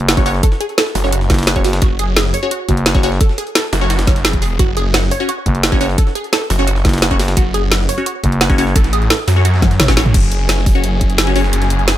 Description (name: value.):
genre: dark technical drum and bass.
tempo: 173 BPM.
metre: 4/4.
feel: straight.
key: F# minor.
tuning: A4 = 439 Hz.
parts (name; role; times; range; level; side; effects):
wide unison pluck; arpeggios; 0.0-10.1 s; F#4 to F#5; -22 LUFS; right 3 dB; phaser, sidechain pumping, tape echo.
growling FM bass; bass; 0.0-3.2, 5.5-8.7 s; F#1; -16 LUFS; equal; none.
drum and bass drum kit; drums; 0.0-11.9 s; crash cymbal, hi-hat, snare drum, toms; -17 LUFS; equal; none.
breakbeat sampler-style drum kit; drums; 0.1-12.0 s; hi-hat, snare drum; -26 LUFS; equal; none.
filtered dub chord stab; stabs; 0.2-11.4 s; C#4 to C#5; -22 LUFS; left 2 dB; phaser, cassette tape, tape echo.
electronic kick drum; drums; 0.2-11.1 s; none; -14 LUFS; equal; none.
snarling distorted saw bass; bass; 1.0-12.0 s; F#1 to F#2; -16 LUFS; equal; distortion, tube saturation, sidechain pumping.
muted studio string section; sustained chords; 10.1-12.0 s; F#3 to G#4; -23 LUFS; left 2 dB; sidechain pumping.
room: digital ambience.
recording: none.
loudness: -12 LUFS.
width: side -13 dB against mid.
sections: 0.0-10.1 A section; 10.1-12.0 A section.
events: drop 0.0-10.1, 10.1-12.0; drum fill 9.6-10.1.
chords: 0.0 F#5.